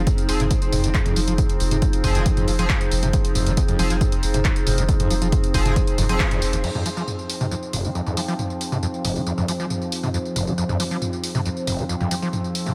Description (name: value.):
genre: driving peak-time techno.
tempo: 137 BPM.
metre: 4/4.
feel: straight.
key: F minor.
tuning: A4 = 442 Hz.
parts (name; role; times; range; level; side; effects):
screaming distorted acid line; riff; 0.0-12.7 s; F1 to F3; -30 LUFS; equal; distortion, subtle chorus, sidechain pumping, tape echo.
saturated sub bass; bass; 0.0-6.6 s; F1; -26 LUFS; equal; overdrive, sidechain pumping, low-pass filter.
overtone-sweeping drone; drone; 0.0-12.7 s; F3 to C4; -33 LUFS; equal; chorus, built-in reverb, phaser, sidechain pumping.
warbly tape-like pad; texture; 0.0-12.7 s; F3 to C5; -31 LUFS; equal; chorus, built-in reverb, sidechain pumping.
electronic kick drum; drums; 0.1-6.3 s; none; -24 LUFS; equal; studio reverb.
punchy analog drum machine; drums; 0.1-12.7 s; crash cymbal, handclaps, hi-hat, tambourine, toms; -29 LUFS; equal; sidechain pumping on hats, studio reverb, sidechain pumping on cymbals, sidechain pumping on perc, sidechain pumping on toms.
sync-sweep polysynth; stabs; 0.3-6.3 s; F3 to Ab4; -32 LUFS; equal; chorus, sidechain pumping, tape echo.
room: light reverb.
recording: none.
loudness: -22 LUFS.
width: mono.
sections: 0.0-6.6 A section; 6.6-12.7 B section.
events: drop 0.0-6.6; band accent 6.2; filter sweep on acid bass 6.6-12.7.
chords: 0.0 Fm.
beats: 0.07 0.51 0.94 | 1.38 1.82 2.26 2.70 | 3.13 3.57 4.01 4.45 | 4.89 5.32 5.76 6.20 | 6.64 7.08 7.51 7.95 | 8.39 8.83 9.27 9.70 | 10.14 10.58 11.02 11.46 | 11.89 12.33.